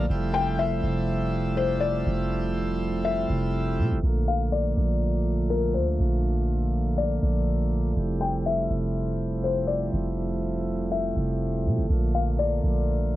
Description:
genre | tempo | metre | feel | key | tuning
hip hop | 122 BPM | 4/4 | half-time | Bb lydian | A4 = 440 Hz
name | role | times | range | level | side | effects
felt-muted upright piano | melody | 0.0-13.2 s | Bb4 to G5 | -29 LUFS | left 6 dB | cassette tape, analog delay
pipe organ, plenum | sustained chords | 0.0-13.2 s | C3 to F4 | -28 LUFS | right 1 dB | cassette tape
soft 808-style bass | bass | 0.0-13.2 s | F1 to C3 | -26 LUFS | equal | none
room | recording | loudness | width
light reverb | home recording on cassette, low-pass filter | -23 LUFS | side -15 dB against mid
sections
0.0-4.0 A section; 4.0-13.2 B section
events
none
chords
0.1 Fmaj9; 4.0 Bbmaj7; 8.0 Fmaj9; 11.9 Bbmaj7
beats
| 0.10 0.59 1.08 1.57 | 2.06 2.56 3.05 3.54 | 4.03 4.52 5.01 5.51 | 6.00 6.49 6.98 7.47 | 7.96 8.46 8.95 9.44 | 9.93 10.42 10.91 11.41 | 11.90 12.39 12.88

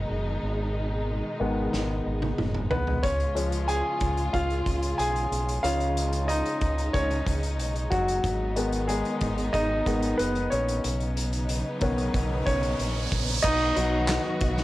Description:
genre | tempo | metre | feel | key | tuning
piano-driven pop | 92 BPM | 4/4 | straight | Db mixolydian | A4 = 440 Hz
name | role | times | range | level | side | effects
bright concert grand piano | accompaniment | 0.0-14.6 s | Db3 to Ab5 | -28 LUFS | left 1 dB | cassette tape
warm studio string section | sustained chords | 0.0-14.6 s | Cb3 to Gb4 | -33 LUFS | equal | cassette tape
fingered electric bass with an envelope filter | bass | 0.0-14.6 s | Gb1 to Db2 | -29 LUFS | equal | none
loose indie drum kit | drums | 1.7-14.6 s | crash cymbal, handclaps, hi-hat, kick drum, snare drum, toms | -32 LUFS | equal | none
riser | sound effects | 12.0-13.4 s | none | -35 LUFS | right 4 dB | none
room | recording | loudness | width
light reverb | home recording on cassette | -24 LUFS | side -16 dB against mid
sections
0.0-13.4 A section; 13.4-14.6 B section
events
grand piano solo 0.0-13.4, 13.4-14.6; drum fill 1.7-3.0; riser 12.0-13.4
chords
0.0 Abm; 3.0 Db; 8.2 Abm; 10.8 Cbadd9; 13.4 Cb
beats
| 0.43 1.08 1.73 2.38 | 3.04 3.69 4.34 4.99 | 5.64 6.29 6.94 7.59 | 8.24 8.89 9.54 10.19 | 10.84 11.49 12.14 12.79 | 13.44 14.09

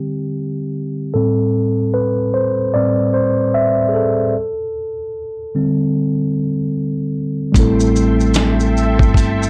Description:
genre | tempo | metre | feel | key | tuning
lo-fi hip hop | 75 BPM | 4/4 | swing 62% on 16ths | A minor | A4 = 442 Hz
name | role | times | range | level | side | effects
mellow tine electric piano | accompaniment | 0.0-9.5 s | A2 to E5 | -18 LUFS | equal | low-pass filter
string machine, violas | sustained chords | 7.5-9.5 s | A4 to C6 | -27 LUFS | equal | phaser, ensemble chorus, low-pass filter
upright bass | bass | 7.5-9.5 s | G1 to A1 | -20 LUFS | equal | none
dusty soul sampler-style drum kit | drums | 7.5-9.5 s | hi-hat, kick drum, shaker, snare drum | -18 LUFS | equal | vintage 12-bit sampler grit
room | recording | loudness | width
moderate small room reverb, RT60 0.5 s | none | -17 LUFS | mono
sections
0.0-7.5 A section; 7.5-9.5 B section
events
tine electric piano solo 0.0-7.5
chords
0.0 D7sus4; 1.1 Am7; 4.3 D7sus4; 7.5 Am7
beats
0.34 | 1.14 1.94 2.74 3.54 | 4.34 5.14 5.94 6.74 | 7.54 8.34 9.14

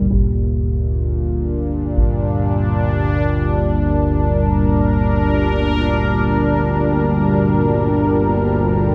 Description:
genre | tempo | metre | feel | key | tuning
dark ambient drone | free time | none | none | unclear | A4 = 440 Hz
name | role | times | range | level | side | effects
sweeping resonant pad | sustained chords | 0.0-8.9 s | Bb2 to Bb4 | -20 LUFS | equal | chorus
dark concert grand piano | arpeggios | 0.0-8.9 s | D2 to D4 | -41 LUFS | equal | none
analog drone | drone | 0.0-8.9 s | G1 to D2 | -21 LUFS | equal | subtle chorus
taiko ensemble | percussion | 0.1-2.2 s | none | -23 LUFS | equal | low-pass filter on perc
bronze singing bowl | texture | 0.1-8.9 s | G4 | -40 LUFS | equal | none
room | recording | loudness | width
wet lush hall reverb, RT60 2.9 s | dreamy mix soaked in reverb | -17 LUFS | mono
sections
0.1-8.9 A section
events
none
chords
0.1 Gm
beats
free time

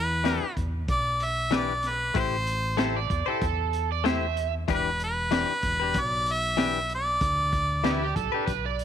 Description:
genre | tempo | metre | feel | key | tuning
straight-eighth soul blues | 95 BPM | 4/4 | swing 55% on 16ths | E minor | A4 = 436 Hz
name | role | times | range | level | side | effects
bright harmonica | melody | 0.0-8.1 s | B4 to E5 | -27 LUFS | equal | overdrive
fingered electric bass | bass | 0.0-8.8 s | E1 to E2 | -31 LUFS | equal | transformer saturation
direct-recorded clean electric guitar | stabs | 0.2-8.5 s | E3 to C5 | -31 LUFS | left 13 dB | none
crunchy breakbeat drum kit | drums | 0.2-8.8 s | hi-hat, kick drum, snare drum | -31 LUFS | equal | none
overdriven slide guitar | second line | 2.8-8.8 s | E4 to E5 | -30 LUFS | right 14 dB | none
room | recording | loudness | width
light reverb, studio reverb | 1960s-style stereo with parts hard left and right | -24 LUFS | side -9 dB against mid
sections
0.0-8.8 A section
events
none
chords
0.0 Em7; 2.1 Am7; 4.7 Em7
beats
0.25 0.88 1.51 | 2.15 2.78 3.42 4.05 | 4.68 5.32 5.95 6.58 | 7.21 7.85 8.48

